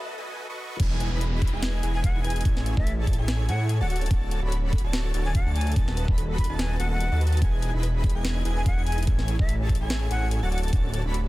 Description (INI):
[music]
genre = future bass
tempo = 145 BPM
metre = 4/4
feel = swing 55% on 16ths, half-time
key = E major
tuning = A4 = 439 Hz
[part]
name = dense compressed supersaw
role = riff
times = 0.0-11.3 s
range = E4 to C#6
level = -35 LUFS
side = equal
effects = sidechain pumping
[part]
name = airy dreamy lead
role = arpeggios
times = 0.8-11.3 s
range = G#5 to B5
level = -38 LUFS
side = equal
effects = chorus, phaser, sidechain pumping, dub echo
[part]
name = wide detuned saw bass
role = bass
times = 0.8-11.3 s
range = D1 to A2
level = -25 LUFS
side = equal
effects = chorus, sidechain pumping
[part]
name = electronic kick drum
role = drums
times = 0.8-10.8 s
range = none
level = -24 LUFS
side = equal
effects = none
[part]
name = trap drum kit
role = drums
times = 0.8-11.2 s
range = crash cymbal, hi-hat, snare drum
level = -34 LUFS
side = equal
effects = high-pass filter on snare, high-pass filter on hats, high-pass filter on cymbals
[part]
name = downlifter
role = sound effects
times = 0.8-4.1 s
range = none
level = -39 LUFS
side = equal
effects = none
[part]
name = soft round pluck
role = arpeggios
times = 0.9-11.3 s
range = C#4 to B4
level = -44 LUFS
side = right 3 dB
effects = none
[part]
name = breathy jazz flute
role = melody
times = 1.9-10.6 s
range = E5 to B5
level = -36 LUFS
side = left 1 dB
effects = vintage 12-bit sampler grit, sidechain pumping, dub echo
[sound]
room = digital ambience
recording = dense, heavily limited modern master, high-pass filter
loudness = -22 LUFS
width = side -18 dB against mid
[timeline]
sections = 0.8-11.3 A section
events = break 0.0-0.8; drop 0.8-11.3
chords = 0.0 B7; 0.8 Emaj7; 2.5 Amaj7; 3.9 Dmaj7; 5.8 B7/D#; 7.4 Emaj7; 9.1 Amaj7; 10.5 Dmaj7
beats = 0.38 | 0.80 1.21 1.62 2.04 | 2.45 2.87 3.28 3.69 | 4.11 4.52 4.93 5.35 | 5.76 6.18 6.59 7.00 | 7.42 7.83 8.24 8.66 | 9.07 9.49 9.90 10.31 | 10.73 11.14